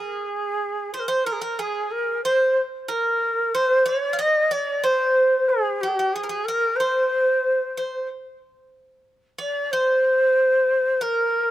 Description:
turkish; 185 BPM (eighths); 9/8; straight; A4 = 438 Hz
breathy ney; melody; 0.0-11.5 s; G4-35c to Eb5; -20 LUFS; equal; slapback echo
Greek bouzouki; second line; 0.0-11.5 s; G4-30c to F5; -26 LUFS; right 2 dB; slapback echo
little or no reverb; recorded outdoors, with no room sound; -19 LUFS; side -13 dB against mid
0.0-11.5 A section

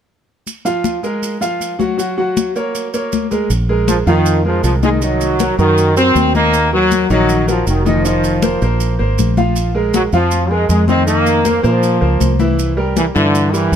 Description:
latin, salsa; 158 BPM; 4/4; straight; A4 = 440 Hz
congas; percussion; 0.5-13.8 s; -22 LUFS; left 8 dB
maracas; percussion; 0.5-13.8 s; -29 LUFS; right 7 dB
clear grand piano; accompaniment; 0.6-13.8 s; Eb3 to Gb5; -18 LUFS; right 1 dB
fingered electric bass; bass; 3.5-13.8 s; F1 to Bb2; -16 LUFS; right 1 dB
brilliant trombone section; melody; 3.9-13.8 s; D3 to C4; -15 LUFS; equal
light reverb; dark, warm production; -12 LUFS; side -8 dB against mid
0.5-3.5 A section; 3.5-13.8 B section
0.5 Bb5; 2.0 Gbadd9; 3.5 Bb5; 5.0 Cm7b5; 6.5 Ebm; 8.0 F7sus4; 9.6 Bb5; 11.1 F7sus4; 12.6 C7

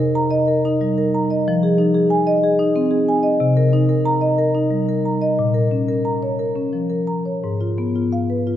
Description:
classical, contemporary piece for solo marimba; 61 BPM (dotted quarters); 6/8; rubato; A4 = 437 Hz
marimba with medium mallets; solo; 0.0-8.6 s; Ab2 to Bb5; -16 LUFS; equal
wet church reverb, RT60 2.7 s; dark, warm production; -16 LUFS; side -11 dB against mid
0.0-8.6 A section
0.0 Cm7; 1.5 Fm7; 3.4 Cm7; 5.4 Bbm; 7.4 Abm6

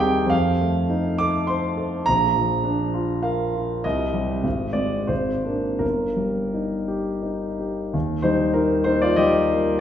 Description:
classical, romantic character piece for solo piano; 80-105 BPM; 3/4; rubato; Eb major; A4 = 440 Hz
warm concert grand piano; solo; 0.0-9.8 s; G1 to D6; -20 LUFS; equal
wet recital hall reverb, RT60 1.7 s; heard from further back in the room; -20 LUFS; side -10 dB against mid
0.0-7.9 A section; 7.9-9.8 A section
0.3 F7; 2.1 Bb; 3.8 Cm; 4.5 Ab; 5.1 Bb7/Ab; 5.8 Eb/G; 7.9 Eb

